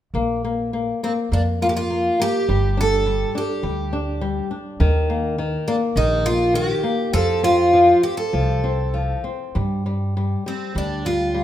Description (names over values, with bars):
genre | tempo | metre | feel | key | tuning
fado-style ballad | 102 BPM | 4/4 | rubato | Bb major | A4 = 439 Hz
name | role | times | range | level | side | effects
flamenco guitar | accompaniment | 0.1-11.4 s | Eb3 to D4 | -24 LUFS | left 4 dB | none
upright bass | bass | 0.1-11.4 s | G1 to G2 | -23 LUFS | right 1 dB | none
picked twelve-string acoustic guitar | melody | 1.0-11.4 s | C4 to A4 | -19 LUFS | right 1 dB | none
room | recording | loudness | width
light reverb | minimal, uncompressed stereo recording | -18 LUFS | side -11 dB against mid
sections
0.1-11.4 A section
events
none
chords
0.1 Bb5; 2.5 G5; 4.8 Eb; 7.1 F; 9.6 G5